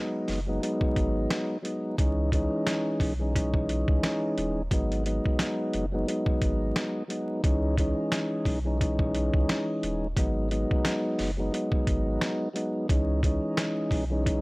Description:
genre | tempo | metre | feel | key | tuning
hip hop, boom-bap hip-hop | 88 BPM | 4/4 | swing 59% on 16ths | C# minor | A4 = 440 Hz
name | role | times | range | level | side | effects
tonewheel organ | accompaniment | 0.0-14.4 s | E3 to D#4 | -28 LUFS | equal | slow rotary speaker, cassette tape, high-pass filter, low-pass filter
saturated sub bass | bass | 0.3-14.4 s | D#1 to C#2 | -30 LUFS | equal | none
boom bap sampler-style drum kit | drums | 0.3-14.4 s | hi-hat, kick drum, snare drum | -28 LUFS | equal | none
room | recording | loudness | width
little or no reverb | dry, gritty hardware recording, vinyl crackle | -25 LUFS | side -24 dB against mid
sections
0.0-14.4 A section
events
none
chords
0.0 G#m7; 2.0 C#madd9; 4.7 G#m7; 7.4 C#madd9; 10.2 G#m7; 12.9 C#madd9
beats
0.62 1.30 | 1.98 2.67 3.35 4.03 | 4.71 5.39 6.08 6.76 | 7.44 8.12 8.80 9.48 | 10.17 10.85 11.53 12.21 | 12.89 13.57 14.26

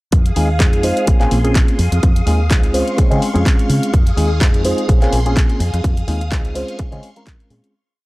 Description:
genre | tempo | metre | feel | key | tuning
filtered disco house | 126 BPM | 4/4 | swing 55% on 16ths | F minor | A4 = 440 Hz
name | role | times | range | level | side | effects
phased string machine | sustained chords | 0.1-7.7 s | Ab4 to Eb6 | -26 LUFS | left 1 dB | ensemble chorus, phaser, sidechain pumping
deep dub fingered electric bass | bass | 0.1-7.6 s | Bb1 to Db3 | -18 LUFS | equal | tube saturation, sidechain pumping
electronic kick drum | drums | 0.1-7.4 s | none | -14 LUFS | equal | none
house drum kit | drums | 0.1-7.7 s | handclaps, hi-hat | -25 LUFS | equal | none
reed electric piano | accompaniment | 0.4-7.7 s | Ab3 to C5 | -20 LUFS | equal | fast tremolo, phaser, sidechain pumping
room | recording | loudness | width
little or no reverb | dry, gritty hardware recording, transformer saturation | -13 LUFS | side -20 dB against mid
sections
0.1-7.7 drop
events
drop 0.1-7.7; fade-out 5.2-7.7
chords
0.1 Fm7; 1.1 Bbm9; 1.8 Fm7; 2.7 Dbmaj7; 3.9 Fm7; 4.9 Bbm9; 5.6 Fm7; 6.6 Dbmaj7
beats
| 0.12 0.60 1.08 1.55 | 2.03 2.50 2.98 3.46 | 3.93 4.41 4.89 5.36 | 5.84 6.32 6.79 7.27

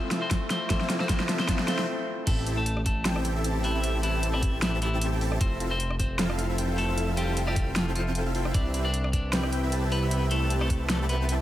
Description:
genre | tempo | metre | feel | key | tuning
future bass | 153 BPM | 4/4 | swing 54% on 16ths, half-time | unclear | A4 = 439 Hz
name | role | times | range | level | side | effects
electric guitar at the edge of break-up | melody | 0.0-11.3 s | E3 to D5 | -33 LUFS | left 1 dB | sidechain pumping, dub echo
barky tine electric piano | accompaniment | 0.0-2.3 s | A3 to E5 | -35 LUFS | left 4 dB | sidechain pumping, tape echo
airy breathy pad | sustained chords | 0.1-11.4 s | C3 to E5 | -41 LUFS | equal | none
dense compressed supersaw | riff | 0.0-11.4 s | C4 to A5 | -32 LUFS | equal | sidechain pumping, low-pass filter
fat analog bass | bass | 0.0-11.4 s | F1 to C2 | -29 LUFS | equal | sidechain pumping, high-pass filter
riser | sound effects | 0.0-1.9 s | none | -36 LUFS | right 1 dB | none
big-room dance drum kit | drums | 0.1-11.4 s | crash cymbal, hi-hat, rim click, snare drum | -31 LUFS | equal | overdrive
electronic kick drum | drums | 0.3-10.8 s | none | -27 LUFS | equal | none
room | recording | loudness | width
little or no reverb | none | -24 LUFS | side -13 dB against mid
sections
0.0-2.3 A section; 2.3-11.4 B section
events
build-up 0.0-2.3; drum fill 0.0-1.9; riser 0.0-1.9; stop 1.9-2.3; drop 2.3-11.4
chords
0.0 Fmaj7; 2.3 Am7; 5.4 Fmaj7; 8.5 Cmaj7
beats
0.31 | 0.70 1.09 1.49 1.88 | 2.27 2.66 3.05 3.45 | 3.84 4.23 4.62 5.01 | 5.41 5.80 6.19 6.58 | 6.97 7.37 7.76 8.15 | 8.54 8.94 9.33 9.72 | 10.11 10.50 10.90 11.29

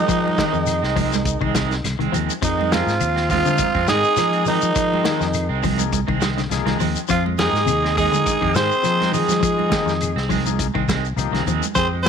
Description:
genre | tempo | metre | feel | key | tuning
afrobeat | 103 BPM | 4/4 | swing 54% on 16ths | F dorian | A4 = 439 Hz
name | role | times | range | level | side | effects
raspy tenor saxophone | melody | 0.0-12.1 s | Eb4 to C5 | -21 LUFS | right 3 dB | slapback echo
bright alto saxophone | second line | 0.0-11.9 s | Ab3 to Ab4 | -28 LUFS | right 12 dB | none
clear trombone section | second line | 0.0-12.1 s | Eb3 to C4 | -29 LUFS | left 15 dB | none
clean electric guitar | arpeggios | 0.0-12.0 s | C3 to F3 | -28 LUFS | left 16 dB | spring reverb
fingered electric bass | bass | 0.0-12.1 s | C2 to F3 | -24 LUFS | left 1 dB | none
warm soul drum kit | drums | 0.1-12.1 s | hi-hat, kick drum, snare drum | -26 LUFS | left 1 dB | none
claves | percussion | 0.1-11.9 s | none | -38 LUFS | left 16 dB | none
shekere | percussion | 0.1-12.1 s | none | -30 LUFS | left 13 dB | none
electric guitar at the edge of break-up | stabs | 0.3-12.1 s | Eb3 to C4 | -28 LUFS | right 14 dB | tremolo
congas | percussion | 0.3-12.1 s | none | -28 LUFS | right 13 dB | none
combo organ | accompaniment | 2.7-12.1 s | F3 to Ab4 | -30 LUFS | left 15 dB | spring reverb
room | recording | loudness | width
light reverb, studio reverb | 1960s-style stereo with parts hard left and right | -17 LUFS | side -7 dB against mid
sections
0.0-12.1 A section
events
none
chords
0.0 Fm7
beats
| 0.08 0.67 1.25 1.84 | 2.42 3.01 3.59 4.18 | 4.76 5.34 5.93 6.51 | 7.09 7.68 8.26 8.84 | 9.43 10.01 10.59 11.17 | 11.75

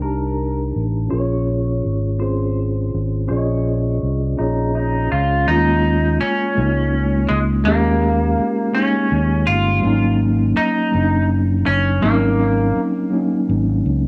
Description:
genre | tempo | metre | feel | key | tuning
slow six-eight R&B | 55 BPM (dotted quarters) | 6/8 | straight | unclear | A4 = 440 Hz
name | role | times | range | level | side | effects
semi-hollow electric guitar | melody | 0.0-12.8 s | Ab3 to Db5 | -25 LUFS | equal | lush chorus, cassette tape
mellow tine electric piano | accompaniment | 0.0-14.1 s | Gb3 to A5 | -22 LUFS | equal | cassette tape
fingered electric bass | bass | 0.0-14.1 s | Gb1 to Eb2 | -22 LUFS | equal | none
room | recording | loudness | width
light reverb | home recording on cassette, low-pass filter | -18 LUFS | mono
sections
0.0-5.5 A section; 5.5-14.1 B section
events
filter sweep 0.0-5.5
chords
0.0 Cm9; 1.1 Bbm9; 5.5 Eb9sus4; 9.8 Ab9sus4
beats
0.02 | 1.11 2.20 | 3.29 4.38 | 5.47 6.56 | 7.65 8.74 | 9.83 10.93 | 12.02 13.11

